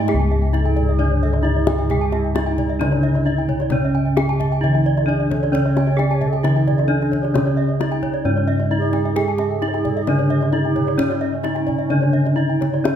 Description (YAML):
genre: Balinese gamelan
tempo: 132 BPM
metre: 4/4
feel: straight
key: C# pelog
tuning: A4 = 440 Hz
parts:
  - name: gamelan-type bronze metallophone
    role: melody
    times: 0.0-13.0 s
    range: C#4 to G#4-45c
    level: -23 LUFS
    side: equal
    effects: none
  - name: gamelan-type bronze metallophone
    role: accompaniment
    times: 0.0-13.0 s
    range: C#3 to G#3-45c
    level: -26 LUFS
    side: right 4 dB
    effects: none
  - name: gamelan-type bronze metallophone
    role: arpeggios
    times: 0.0-13.0 s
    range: C#5 to G#5-45c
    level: -27 LUFS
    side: left 6 dB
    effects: none
  - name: gamelan-type bossed gongs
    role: bass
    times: 0.0-13.0 s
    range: C#2 to G#4-45c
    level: -20 LUFS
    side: left 1 dB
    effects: none
  - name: kendang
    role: percussion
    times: 0.1-13.0 s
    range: none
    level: -27 LUFS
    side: left 4 dB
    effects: none
  - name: gamelan-type bronze metallophone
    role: arpeggios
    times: 0.2-12.8 s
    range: C#5 to A5-40c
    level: -28 LUFS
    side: right 6 dB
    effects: none
  - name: wooden-headed alto flute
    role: second line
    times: 0.6-12.4 s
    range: C#4 to D5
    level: -28 LUFS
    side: right 5 dB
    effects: none
room: moderate recital hall reverb, RT60 1.3 s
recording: none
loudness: -16 LUFS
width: side -9 dB against mid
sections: 0.1-13.0 A section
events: none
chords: none